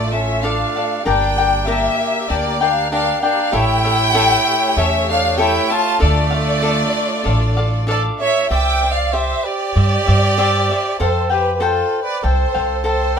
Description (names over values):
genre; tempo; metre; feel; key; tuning
mexican folk, mariachi; 97 BPM; 4/4; straight; D harmonic minor, C major from 8.5 s; A4 = 442 Hz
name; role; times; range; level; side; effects
rich studio violin section; melody; 0.0-13.1 s; A4 to A5; -19 LUFS; equal; none
clear trumpet; second line; 0.0-13.2 s; A3 to E5; -22 LUFS; right 5 dB; none
cavaquinho; accompaniment; 0.0-13.2 s; D4 to G5; -21 LUFS; left 4 dB; none
bright studio violin section; sustained chords; 0.0-8.5 s; A3 to C#5; -27 LUFS; left 1 dB; none
upright bass; bass; 0.0-13.1 s; G1 to G2; -19 LUFS; equal; none
room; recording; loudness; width
moderate small room reverb, RT60 0.5 s; minimal, uncompressed stereo recording; -14 LUFS; side -7 dB against mid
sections
0.0-8.5 A section; 8.5-13.2 B section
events
none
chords
0.0 Dm; 1.1 Gm; 3.5 A7; 6.0 Dm; 8.5 Cadd9; 11.0 Fadd9